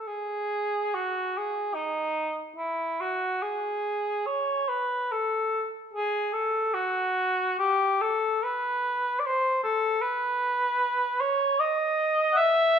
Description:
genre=classical, free, expressive piece for unaccompanied cor anglais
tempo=65-80 BPM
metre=3/4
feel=rubato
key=unclear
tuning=A4 = 440 Hz
part: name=mellow cor anglais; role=solo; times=0.0-12.8 s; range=D#4 to F#5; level=-24 LUFS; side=equal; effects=none
room=moderate recital hall reverb, RT60 1.4 s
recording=none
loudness=-25 LUFS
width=side -7 dB against mid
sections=0.1-12.8 A section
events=none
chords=none

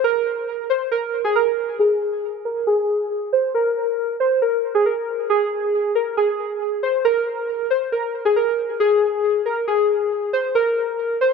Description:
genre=hip hop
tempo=137 BPM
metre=4/4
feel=half-time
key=unclear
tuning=A4 = 441 Hz
part: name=warbly lo-fi synth keys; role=solo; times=0.0-11.3 s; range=Ab4 to C5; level=-18 LUFS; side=equal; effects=chorus, low-pass filter, tape echo
room=light reverb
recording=echo-heavy mix, nothing above 11.0 kHz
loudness=-18 LUFS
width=side -5 dB against mid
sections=0.0-1.8 A section; 1.8-8.8 B section; 8.8-11.3 C section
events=filter sweep on synth keys 1.8-8.8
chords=none

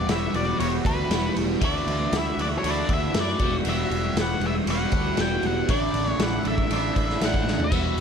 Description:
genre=psychedelic rock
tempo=118 BPM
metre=4/4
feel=straight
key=E minor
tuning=A4 = 440 Hz
part: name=octave-fuzz lead guitar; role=melody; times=0.0-8.0 s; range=B4 to G5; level=-30 LUFS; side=left 3 dB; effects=distortion, tape echo
part: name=twelve-string electric guitar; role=riff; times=0.0-8.0 s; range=A2 to F#4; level=-26 LUFS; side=right 1 dB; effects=phaser, double-tracked left and right
part: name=fuzz picked electric bass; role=bass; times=0.1-8.0 s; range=E1 to F#2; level=-29 LUFS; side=equal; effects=overdrive
part: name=raw garage drum kit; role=drums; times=0.1-8.0 s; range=crash cymbal, hi-hat, kick drum, ride cymbal, snare drum, toms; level=-26 LUFS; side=equal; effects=none
part: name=congas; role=percussion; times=0.1-7.7 s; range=none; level=-40 LUFS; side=right 8 dB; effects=none
room=light reverb, small room ambience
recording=none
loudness=-21 LUFS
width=side -7 dB against mid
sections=0.0-7.7 A section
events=drum fill 7.5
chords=0.0 Emadd9; 1.6 Dadd9; 3.4 Emadd9; 5.7 Asus4

